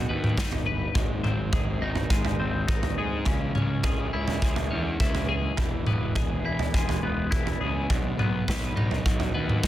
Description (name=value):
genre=quiet-loud alternative rock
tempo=104 BPM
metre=4/4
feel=straight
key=unclear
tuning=A4 = 439 Hz
part: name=twelve-string electric guitar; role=arpeggios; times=0.0-9.7 s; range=E2 to B4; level=-31 LUFS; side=left 3 dB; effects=phaser
part: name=fuzz picked electric bass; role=bass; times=0.0-9.7 s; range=E1 to Ab2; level=-30 LUFS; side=equal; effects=overdrive
part: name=big rock drum kit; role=drums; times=0.2-9.7 s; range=kick drum, snare drum, toms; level=-26 LUFS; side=right 1 dB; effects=none
room=light reverb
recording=dense, heavily limited modern master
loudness=-24 LUFS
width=side -13 dB against mid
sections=0.0-9.7 A section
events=none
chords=0.0 B; 1.0 Ab; 3.3 Dbm; 5.6 E; 7.9 B